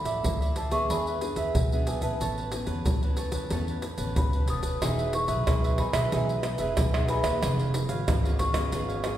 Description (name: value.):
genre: samba and choro.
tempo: 92 BPM.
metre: 4/4.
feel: straight.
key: A major, E major from 4.8 s.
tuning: A4 = 439 Hz.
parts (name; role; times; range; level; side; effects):
large celesta; melody; 0.0-9.2 s; A5 to D#6; -34 LUFS; left 1 dB; none.
nylon-string guitar; accompaniment; 0.0-9.2 s; A2 to G#4; -34 LUFS; left 2 dB; none.
upright bass; bass; 0.0-9.1 s; E1 to E2; -32 LUFS; equal; none.
cavaquinho; accompaniment; 0.1-9.2 s; D4 to A5; -33 LUFS; right 4 dB; none.
egg shaker, surdo, pandeiro and tamborim; percussion; 0.1-9.2 s; none; -28 LUFS; equal; none.
room: wet recital hall reverb, RT60 1.7 s.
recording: recorded in a church or concert hall.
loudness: -24 LUFS.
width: side -12 dB against mid.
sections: 0.0-4.8 A section; 4.8-9.2 B section.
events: none.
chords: 0.0 Dmadd9; 0.9 E7; 2.2 Aadd9; 4.8 Emaj7; 7.4 C#7/E#.